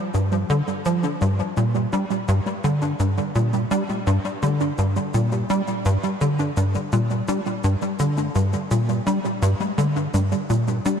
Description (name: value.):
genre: ambient, sequencer-driven space music.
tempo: 84 BPM.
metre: 4/4.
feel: straight.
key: G minor.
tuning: A4 = 440 Hz.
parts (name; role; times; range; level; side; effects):
warbly dusty pluck; arpeggios; 0.0-11.0 s; G3 to D4; -27 LUFS; moving between left 5 dB and right 5 dB; chorus, auto-pan, ping-pong delay, shimmer reverb.
tight sequencer bass; riff; 0.1-11.0 s; G2 to G3; -21 LUFS; equal; ensemble chorus, ping-pong delay.
shaker and congas; percussion; 0.1-11.0 s; none; -37 LUFS; left 1 dB; ping-pong delay.
room: moderate lush hall reverb, RT60 2.7 s.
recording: dark, warm production.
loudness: -20 LUFS.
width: side -7 dB against mid.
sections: 0.0-11.0 A section.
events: none.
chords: 0.0 Gm.